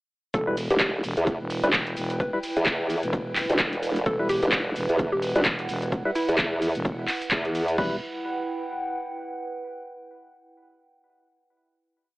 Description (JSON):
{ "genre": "bass house", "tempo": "129 BPM", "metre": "4/4", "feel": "swing 57% on 16ths", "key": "E minor", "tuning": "A4 = 440 Hz", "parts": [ { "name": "hollow square pluck", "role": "melody", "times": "0.3-6.6 s", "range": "E4 to B4", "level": "-29 LUFS", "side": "equal", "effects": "chorus, tape echo" }, { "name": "growling FM bass", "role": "bass", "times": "0.3-8.0 s", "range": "E1", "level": "-32 LUFS", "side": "equal", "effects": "tube saturation, sidechain pumping" }, { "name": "big-room dance drum kit", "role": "drums", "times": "0.3-7.9 s", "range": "crash cymbal, kick drum", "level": "-30 LUFS", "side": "equal", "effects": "studio reverb" }, { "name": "garage drum kit", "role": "drums", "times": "0.3-7.8 s", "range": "handclaps, hi-hat, ride cymbal, shaker", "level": "-27 LUFS", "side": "equal", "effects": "overdrive, studio reverb" }, { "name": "warbly tape-like pad", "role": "texture", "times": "1.0-9.6 s", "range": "E4 to G5", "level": "-32 LUFS", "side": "right 2 dB", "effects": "chorus, built-in reverb, phaser, sidechain pumping" }, { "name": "percussive organ stab", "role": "stabs", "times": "0.5-8.0 s", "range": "G3 to B4", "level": "-30 LUFS", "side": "equal", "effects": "wide subtle chorus, sidechain pumping, tape echo" }, { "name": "formant-sweep wobble bass", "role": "bass", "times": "0.7-7.8 s", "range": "E1 to E2", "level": "-24 LUFS", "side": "equal", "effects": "chorus, overdrive, sidechain pumping" } ], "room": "light reverb, digital ambience", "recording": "AM radio sound", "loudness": "-23 LUFS", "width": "side -20 dB against mid", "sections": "0.3-7.8 drop; 7.8-9.6 final chord", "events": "drop 0.3-7.8", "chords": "0.3 Em" }